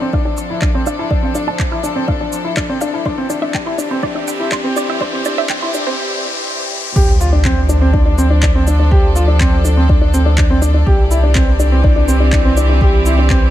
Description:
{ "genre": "piano and strings electronica", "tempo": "123 BPM", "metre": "4/4", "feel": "straight", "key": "D minor", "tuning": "A4 = 442 Hz", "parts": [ { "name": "rich studio string section", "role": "sustained chords", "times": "0.0-13.5 s", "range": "E3 to D5", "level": "-22 LUFS", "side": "equal", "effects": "sidechain pumping" }, { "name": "wide unison pluck", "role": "arpeggios", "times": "0.0-5.9 s", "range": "C5 to F6", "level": "-26 LUFS", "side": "moving between left 1 dB and right 10 dB", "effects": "auto-pan, sidechain pumping, tape echo" }, { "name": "warm grand piano", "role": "riff", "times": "0.0-13.4 s", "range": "C4 to G4", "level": "-19 LUFS", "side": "left 1 dB", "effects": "tape echo" }, { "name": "riser and impact", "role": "sound effects", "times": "2.3-8.9 s", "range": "none", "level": "-24 LUFS", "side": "left 1 dB", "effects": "none" }, { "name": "electronic kick drum", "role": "drums", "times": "0.1-13.4 s", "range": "none", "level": "-15 LUFS", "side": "equal", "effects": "none" }, { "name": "organic electronic drum kit", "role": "drums", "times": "0.4-13.4 s", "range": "crash cymbal, handclaps, shaker", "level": "-26 LUFS", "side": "equal", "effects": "none" }, { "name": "warm sub bass", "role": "bass", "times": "7.0-13.5 s", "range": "C2 to D2", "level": "-13 LUFS", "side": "equal", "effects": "sidechain pumping" } ], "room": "digital ambience", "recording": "high-pass filter", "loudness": "-12 LUFS", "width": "side -13 dB against mid", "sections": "0.0-7.0 A section; 7.0-13.5 B section", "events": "build-up 0.0-7.0; filter sweep on synth arpeggio sound 0.0-7.0; filter sweep 0.0-7.0; riser 2.3-7.0; break 6.0-7.0; drop 7.0-13.5; impact 7.0-8.9", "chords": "0.0 Dm; 3.1 Cadd9; 7.0 Dm; 10.9 Cadd9", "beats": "0.13 0.62 | 1.11 1.60 2.08 2.57 | 3.06 3.55 4.04 4.52 | 5.01 5.50 5.99 6.47 | 6.96 7.45 7.94 8.43 | 8.91 9.40 9.89 10.38 | 10.87 11.35 11.84 12.33 | 12.82 13.30" }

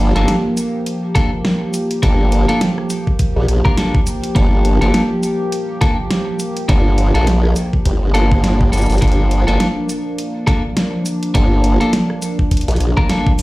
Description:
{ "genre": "glitch hop", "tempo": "103 BPM", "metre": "4/4", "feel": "swing 58% on 16ths", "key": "G minor", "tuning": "A4 = 440 Hz", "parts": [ { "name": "warm analog pad", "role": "sustained chords", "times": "0.0-13.4 s", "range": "F3 to G4", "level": "-21 LUFS", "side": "equal", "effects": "chorus, sidechain pumping" }, { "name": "clean electric guitar", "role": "stabs", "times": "0.0-13.3 s", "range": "Bb3 to Bb4", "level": "-20 LUFS", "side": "left 1 dB", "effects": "vintage 12-bit sampler grit, sidechain pumping, tape echo" }, { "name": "formant-sweep wobble bass", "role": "bass", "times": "0.0-12.9 s", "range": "G1 to Bb1", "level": "-14 LUFS", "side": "equal", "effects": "chorus" }, { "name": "dubstep drum kit", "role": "drums", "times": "0.2-13.4 s", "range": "hi-hat, rim click, shaker, snare drum", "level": "-22 LUFS", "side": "equal", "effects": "none" }, { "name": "electronic kick drum", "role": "drums", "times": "1.2-13.4 s", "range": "none", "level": "-15 LUFS", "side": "equal", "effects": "none" } ], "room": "moderate studio ambience, RT60 0.5 s", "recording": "played on a big sound system in a bare room, large studio reverb", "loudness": "-13 LUFS", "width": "side -19 dB against mid", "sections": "0.0-13.4 A section", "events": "none", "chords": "0.0 Gm7", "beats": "0.28 0.86 1.45 | 2.03 2.61 3.19 3.78 | 4.36 4.94 5.52 6.11 | 6.69 7.27 7.85 8.44 | 9.02 9.60 10.18 10.77 | 11.35 11.93 12.51 13.10" }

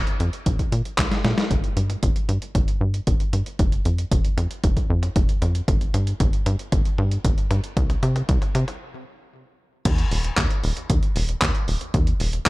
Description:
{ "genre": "italo disco", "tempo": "115 BPM", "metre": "4/4", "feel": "straight", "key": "unclear", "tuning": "A4 = 442 Hz", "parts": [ { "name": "tight sequencer bass", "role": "bass", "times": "0.0-12.5 s", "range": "Eb1 to C3", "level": "-23 LUFS", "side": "equal", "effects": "tube saturation" }, { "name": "dusty soul sampler-style drum kit", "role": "drums", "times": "0.1-12.5 s", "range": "crash cymbal, handclaps, hi-hat, snare drum, toms", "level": "-28 LUFS", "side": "equal", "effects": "overdrive, high-pass filter on hats, small room ambience, high-pass filter on snare, high-pass filter on toms, high-pass filter on cymbals" }, { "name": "electronic kick drum", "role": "drums", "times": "0.5-12.5 s", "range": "none", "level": "-22 LUFS", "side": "equal", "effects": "small room ambience" } ], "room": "little or no reverb", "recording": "dark, warm production", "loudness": "-20 LUFS", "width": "side -21 dB against mid", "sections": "0.0-1.5 A section; 1.5-9.9 B section; 9.9-12.5 C section", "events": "drum fill 1.0-1.5, 1.5-8.8; stop 8.8-9.9", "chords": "none", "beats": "0.46 0.98 | 1.51 2.03 2.55 3.07 | 3.59 4.12 4.64 5.16 | 5.68 6.20 6.72 7.25 | 7.77 8.29 8.81 9.33 | 9.85 10.38 10.90 11.42 | 11.94 12.46" }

